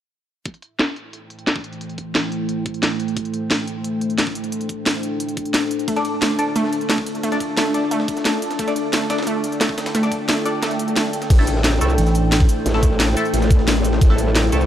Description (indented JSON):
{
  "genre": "dark technical drum and bass",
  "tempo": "177 BPM",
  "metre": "4/4",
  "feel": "straight",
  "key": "A minor",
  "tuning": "A4 = 440 Hz",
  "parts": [
    { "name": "deep dark ambient pad", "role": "sustained chords", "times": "1.7-14.7 s", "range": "A3 to E5", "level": "-24 LUFS", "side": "left 1 dB", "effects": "chorus, built-in reverb, sidechain pumping" },
    { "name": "drum and bass drum kit", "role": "drums", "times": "0.5-14.7 s", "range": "crash cymbal, hi-hat, shaker, snare drum", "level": "-22 LUFS", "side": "equal", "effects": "low-pass filter on hats, low-pass filter on snare, low-pass filter on cymbals, low-pass filter on perc, low-pass filter on room" },
    { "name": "electronic kick drum", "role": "drums", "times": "0.5-14.1 s", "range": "none", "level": "-16 LUFS", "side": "equal", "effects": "high-pass filter on kick, high-pass filter on room" },
    { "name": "airy breathy pad", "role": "texture", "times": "1.1-14.7 s", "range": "E4 to A5", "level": "-30 LUFS", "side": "equal", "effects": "chorus, phaser, sidechain pumping" },
    { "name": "wide unison pluck", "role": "arpeggios", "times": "5.9-11.0 s", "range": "A3", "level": "-24 LUFS", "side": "right 1 dB", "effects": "sidechain pumping, dub echo" },
    { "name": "breakbeat sampler-style drum kit", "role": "drums", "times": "5.9-14.6 s", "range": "ride cymbal, snare drum", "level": "-32 LUFS", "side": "equal", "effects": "none" },
    { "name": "band-passed chord stab", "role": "stabs", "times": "6.0-14.6 s", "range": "A3 to D5", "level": "-27 LUFS", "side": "left 1 dB", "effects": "phaser, dub echo" },
    { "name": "swell", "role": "sound effects", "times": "10.8-11.3 s", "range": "none", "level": "-28 LUFS", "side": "right 2 dB", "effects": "none" },
    { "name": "growl bass", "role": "bass", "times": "11.3-14.7 s", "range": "A1 to C2", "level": "-19 LUFS", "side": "equal", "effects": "chorus, tube saturation, sidechain pumping" },
    { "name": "growling FM bass", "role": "bass", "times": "12.0-12.5 s", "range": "A1", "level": "-17 LUFS", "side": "equal", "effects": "none" }
  ],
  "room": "light reverb",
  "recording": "dark, warm production",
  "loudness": "-17 LUFS",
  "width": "side -11 dB against mid",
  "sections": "0.5-11.3 A section; 11.3-14.7 B section",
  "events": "fade-in on analog synth pad 0.5-11.3; filter sweep on ambient pad 0.5-11.3; kick drops out 10.6-11.3; swell 10.8-11.3; drop 11.3-14.7",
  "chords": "0.5 Am7; 5.9 Dm; 11.3 Am7",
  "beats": "| 0.46 0.79 1.13 1.47 | 1.81 2.15 2.49 2.83 | 3.17 3.51 3.85 4.18 | 4.52 4.86 5.20 5.54 | 5.88 6.22 6.56 6.90 | 7.24 7.57 7.91 8.25 | 8.59 8.93 9.27 9.61 | 9.95 10.29 10.62 10.96 | 11.30 11.64 11.98 12.32 | 12.66 13.00 13.34 13.68 | 14.02 14.35"
}